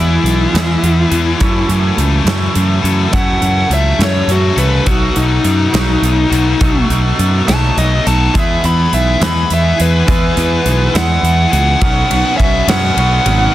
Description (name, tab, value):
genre	indie rock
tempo	69 BPM (dotted quarters)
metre	6/8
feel	straight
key	unclear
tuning	A4 = 444 Hz
part	smooth overdriven lead guitar	melody	0.0-13.5 s	D#4 to B5	-17 LUFS	left 1 dB	none
part	heavy high-gain guitar	riff	0.0-13.5 s	E3 to A4	-20 LUFS	left 8 dB	distortion
part	twangy electric guitar	riff	0.0-13.5 s	F#2 to E4	-20 LUFS	right 6 dB	lush chorus
part	fuzz picked electric bass	bass	0.0-13.5 s	G#1 to F#2	-14 LUFS	equal	overdrive
part	big rock drum kit	drums	0.3-13.4 s	hi-hat, kick drum, ride cymbal, snare drum	-18 LUFS	equal	none
room	small room ambience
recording	dense, heavily limited modern master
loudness	-10 LUFS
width	side -14 dB against mid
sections	0.0-11.8 A section; 11.8-13.5 B section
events	lead electric guitar solo 0.0-11.8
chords	0.0 E; 1.4 F#m7; 4.9 B7; 8.3 E; 11.8 Bsus2